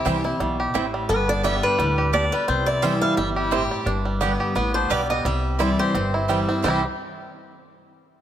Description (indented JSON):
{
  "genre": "bluegrass",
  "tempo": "173 BPM",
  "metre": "4/4",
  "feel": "swing 56% on 8ths",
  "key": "C major",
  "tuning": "A4 = 435 Hz",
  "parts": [
    { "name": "rich fiddle", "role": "second line", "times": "0.0-0.2, 3.4-3.9 s", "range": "E4 to G4", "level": "-33 LUFS", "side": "left 3 dB", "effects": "none" },
    { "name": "picked steel-string acoustic guitar", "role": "accompaniment", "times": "0.0-6.8 s", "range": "G2 to G4", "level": "-26 LUFS", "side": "left 1 dB", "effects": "none" },
    { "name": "bluegrass banjo", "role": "arpeggios", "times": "0.0-6.9 s", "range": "G3 to G4", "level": "-26 LUFS", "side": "right 2 dB", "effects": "none" },
    { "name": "mandolin", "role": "stabs", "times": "0.1-6.8 s", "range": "B3 to G5", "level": "-29 LUFS", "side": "right 5 dB", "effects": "none" },
    { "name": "upright bass", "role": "bass", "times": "0.1-6.8 s", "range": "G1 to D2", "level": "-27 LUFS", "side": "equal", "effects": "none" },
    { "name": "picked swing-style acoustic guitar", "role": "melody", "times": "1.1-6.8 s", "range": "B4 to F5", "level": "-24 LUFS", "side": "left 1 dB", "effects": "none" }
  ],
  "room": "light reverb",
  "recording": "none",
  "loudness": "-20 LUFS",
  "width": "side -10 dB against mid",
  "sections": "0.0-3.9 A section; 3.9-6.6 B section; 6.6-8.0 C section",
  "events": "none",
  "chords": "0.0 C; 1.1 G; 2.5 C; 3.9 G; 5.3 C",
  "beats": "0.06 0.40 0.75 | 1.09 1.44 1.79 2.13 | 2.48 2.83 3.17 3.52 | 3.87 4.21 4.56 4.91 | 5.25 5.60 5.95 6.29 | 6.64"
}